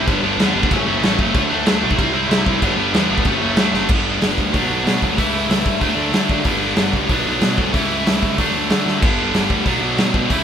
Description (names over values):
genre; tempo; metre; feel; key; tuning
punk rock; 187 BPM; 4/4; straight; unclear; A4 = 439 Hz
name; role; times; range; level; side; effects
tight distorted guitar; riff; 0.0-10.4 s; F#2 to E4; -18 LUFS; equal; distortion
fuzz picked electric bass; bass; 0.0-10.4 s; F#1 to D3; -25 LUFS; equal; overdrive
big rock drum kit; drums; 0.1-10.4 s; crash cymbal, hi-hat, kick drum, snare drum; -19 LUFS; equal; none
room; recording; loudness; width
light reverb; band playing live in one room; -15 LUFS; side -8 dB against mid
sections
0.0-3.9 A section; 3.9-10.4 B section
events
drum fill 3.7, 8.9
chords
0.1 G; 0.7 F#m; 1.3 D; 2.0 C; 2.6 G; 3.3 F#m; 3.6 D; 3.9 G; 4.5 Bm; 5.2 A/C#; 5.8 D; 6.5 G; 7.1 Bm; 7.7 A/C#; 8.4 D; 9.0 G; 9.7 Bm